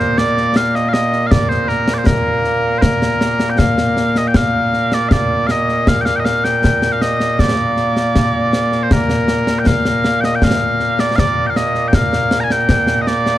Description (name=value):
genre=scottish traditional, Scottish pipe music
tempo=79 BPM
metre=2/4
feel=straight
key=Bb major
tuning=A4 = 440 Hz
part: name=mellow small bagpipes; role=melody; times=0.0-13.4 s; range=Bb2 to Bb5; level=-15 LUFS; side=equal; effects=none
part: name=concert snare drum and concert bass drum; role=drums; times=0.0-13.4 s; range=none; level=-17 LUFS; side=equal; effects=none
room=light reverb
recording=dark, warm production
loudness=-13 LUFS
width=side -14 dB against mid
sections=0.0-2.8 A section; 2.8-13.4 B section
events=none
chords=none